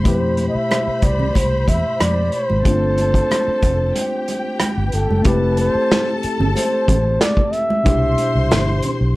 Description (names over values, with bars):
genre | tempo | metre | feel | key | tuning
lush 1970s-style soul | 92 BPM | 4/4 | straight | unclear | A4 = 441 Hz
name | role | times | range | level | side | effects
dark symphonic string section | second line | 0.0-9.2 s | G4 to C6 | -27 LUFS | left 2 dB | none
barky tine electric piano | accompaniment | 0.0-9.2 s | B2 to G4 | -23 LUFS | left 2 dB | overdrive
vintage muted fingered electric bass | bass | 0.0-9.1 s | F1 to F2 | -20 LUFS | equal | none
breathy flugelhorn | melody | 0.1-8.8 s | A4 to E5 | -20 LUFS | equal | none
vintage drum kit | drums | 0.1-9.0 s | hi-hat, kick drum, rim click, snare drum | -19 LUFS | equal | none
congas | percussion | 0.1-9.0 s | none | -27 LUFS | right 3 dB | none
room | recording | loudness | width
light reverb | none | -15 LUFS | side -19 dB against mid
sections
0.0-5.3 A section; 5.3-9.2 B section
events
none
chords
0.1 Fmaj9#11; 2.7 G7sus4; 5.3 Fmaj7; 7.9 Cmaj7